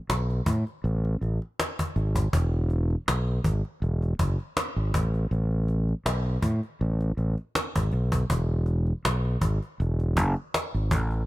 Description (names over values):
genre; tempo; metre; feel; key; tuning
lush 1970s-style soul; 80 BPM; 4/4; swing 54% on 16ths; E major; A4 = 441 Hz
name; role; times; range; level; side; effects
overdriven fingered electric bass; bass; 0.1-11.2 s; E1 to A2; -24 LUFS; equal; none
cajon; drums; 0.1-11.2 s; none; -28 LUFS; equal; none
room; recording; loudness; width
small room ambience; none; -24 LUFS; side -18 dB against mid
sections
0.0-11.3 A section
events
none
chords
none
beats
0.09 0.84 1.58 | 2.33 3.08 3.82 4.57 | 5.32 6.06 6.81 7.55 | 8.30 9.05 9.79 10.54